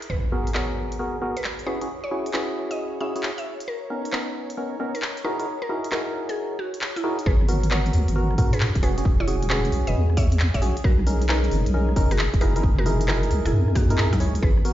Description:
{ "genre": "UK garage, two-step garage", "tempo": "134 BPM", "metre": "4/4", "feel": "swing 67% on 16ths", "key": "G# minor", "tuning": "A4 = 440 Hz", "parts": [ { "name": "house drum kit", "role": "drums", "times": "0.0-14.7 s", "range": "handclaps, hi-hat, rim click", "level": "-30 LUFS", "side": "equal", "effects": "none" }, { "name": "mallet-like synth pluck", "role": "melody", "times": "0.1-14.6 s", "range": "F#3 to E5", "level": "-32 LUFS", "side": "equal", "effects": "chorus, cassette tape, dub echo" }, { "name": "ethereal airy pad", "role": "sustained chords", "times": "0.8-14.7 s", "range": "G#4 to C#5", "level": "-36 LUFS", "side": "left 2 dB", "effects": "ensemble chorus, built-in reverb, sidechain pumping" }, { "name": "impact", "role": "sound effects", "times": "0.1-1.9 s", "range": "none", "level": "-29 LUFS", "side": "equal", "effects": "none" }, { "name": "percussive organ stab", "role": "stabs", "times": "0.3-14.7 s", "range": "B3 to C#5", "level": "-28 LUFS", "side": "equal", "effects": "chorus, dub echo" }, { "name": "deep soft wobble bass", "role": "bass", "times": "7.3-14.7 s", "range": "E1 to G#2", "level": "-22 LUFS", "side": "equal", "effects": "chorus" }, { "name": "electronic kick drum", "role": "drums", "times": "7.3-14.5 s", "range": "none", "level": "-22 LUFS", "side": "equal", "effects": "none" } ], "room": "light reverb", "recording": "played on a big sound system in a bare room, stone room reverb, nothing above 7.5 kHz", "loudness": "-21 LUFS", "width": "side -13 dB against mid", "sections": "0.1-7.3 A section; 7.3-14.7 B section", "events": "impact 0.1-1.9; drop 7.3-14.7", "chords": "0.1 G#m9; 1.7 E69; 3.7 Bmaj9; 5.2 F#13; 7.3 G#m9; 8.8 E69; 10.8 Bmaj9; 12.4 F#13" }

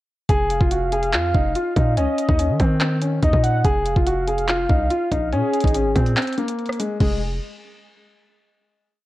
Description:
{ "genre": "hip hop, trap", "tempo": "143 BPM", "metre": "4/4", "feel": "half-time", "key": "F phrygian", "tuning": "A4 = 439 Hz", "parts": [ { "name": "dark grand piano", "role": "melody", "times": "0.3-7.2 s", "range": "Ab3 to Ab4", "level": "-22 LUFS", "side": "left 2 dB", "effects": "low-pass filter" }, { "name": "hard-hitting 808-style bass", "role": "bass", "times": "0.3-7.4 s", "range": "F1 to Eb3", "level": "-22 LUFS", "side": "equal", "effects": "none" }, { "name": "trap drum kit", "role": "drums", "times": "0.3-7.1 s", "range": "crash cymbal, handclaps, hi-hat, kick drum, rim click", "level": "-21 LUFS", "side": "equal", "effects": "none" }, { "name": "warm velvety synth lead", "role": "second line", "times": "0.5-7.2 s", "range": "Ab4 to Gb5", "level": "-26 LUFS", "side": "right 2 dB", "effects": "chorus, ping-pong delay" } ], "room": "digital ambience", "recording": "worn, warbling old tape, cassette tape, warbly pitch drift", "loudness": "-18 LUFS", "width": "side -16 dB against mid", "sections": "0.3-7.0 hook; 7.0-8.7 final chord", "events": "break 6.2-7.0", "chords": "0.3 Fm; 2.0 Eb5; 3.6 F5; 5.3 Absus2; 7.0 Fm" }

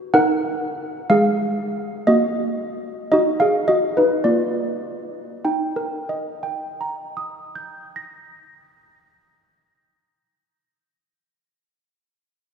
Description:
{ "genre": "classical, tune for handbells", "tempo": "49-65 BPM", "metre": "3/4", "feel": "straight", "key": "unclear", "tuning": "A4 = 440 Hz", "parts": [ { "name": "malleted handbells", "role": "solo", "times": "0.1-10.5 s", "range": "Ab3 to Bb6", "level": "-19 LUFS", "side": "equal", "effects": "none" } ], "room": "wet church reverb, RT60 3.3 s", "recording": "heard from further back in the room", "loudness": "-19 LUFS", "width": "side -6 dB against mid", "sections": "0.0-5.4 A section; 5.4-9.1 B section", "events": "slowing down 0.0-5.4", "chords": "0.0 Ebm; 1.1 N.C.; 2.1 Ebm/Bb; 4.2 Bb; 5.4 Eb" }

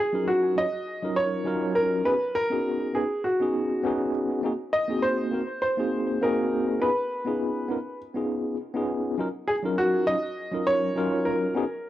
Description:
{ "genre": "chillout", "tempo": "101 BPM", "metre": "4/4", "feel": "swing 53% on 16ths", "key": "Eb minor", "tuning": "A4 = 439 Hz", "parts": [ { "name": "warm baby grand piano", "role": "melody", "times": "0.0-11.9 s", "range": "Gb4 to Eb5", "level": "-26 LUFS", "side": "equal", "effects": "cassette tape, tape echo" }, { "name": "tine electric piano", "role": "accompaniment", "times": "0.1-11.6 s", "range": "Gb3 to Db5", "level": "-27 LUFS", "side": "equal", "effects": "fast stereo tremolo, auto-pan, cassette tape, tape echo" } ], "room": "wet booth ambience, RT60 0.2 s", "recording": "home recording on cassette", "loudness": "-24 LUFS", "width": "side -13 dB against mid", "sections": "0.0-11.9 A section", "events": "none", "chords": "0.0 Ebm7; 2.1 B69; 4.4 Ab7; 6.8 Db9; 9.2 Ebm7" }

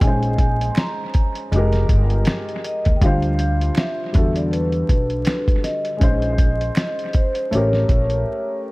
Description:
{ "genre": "lo-fi hip hop", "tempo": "80 BPM", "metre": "4/4", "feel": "swing 56% on 16ths", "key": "unclear", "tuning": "A4 = 440 Hz", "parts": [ { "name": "vibraphone with soft mallets", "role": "melody", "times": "0.0-8.6 s", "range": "B4 to C6", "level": "-25 LUFS", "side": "equal", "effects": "low-pass filter, dub echo" }, { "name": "warm upright piano", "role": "accompaniment", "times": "0.0-8.7 s", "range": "D3 to C5", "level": "-25 LUFS", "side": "equal", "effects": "cassette tape, low-pass filter, dub echo" }, { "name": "upright bass", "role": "bass", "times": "0.0-8.2 s", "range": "F1 to E2", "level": "-20 LUFS", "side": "equal", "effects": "none" }, { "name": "lo-fi sampler-style drum kit", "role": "drums", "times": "0.0-8.3 s", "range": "hi-hat, kick drum, snare drum", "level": "-19 LUFS", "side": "equal", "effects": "vintage 12-bit sampler grit" }, { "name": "finger snaps", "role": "percussion", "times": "0.7-7.0 s", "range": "none", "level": "-39 LUFS", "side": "right 2 dB", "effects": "none" } ], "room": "small room ambience", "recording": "echo-heavy mix, vinyl crackle", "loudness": "-17 LUFS", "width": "side -22 dB against mid", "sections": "0.0-8.7 A section", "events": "break 8.3-8.7", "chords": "0.0 Bbm11; 1.5 Fm11; 3.0 Dm7; 4.1 Em11; 6.0 Bbm11; 7.5 A7b9" }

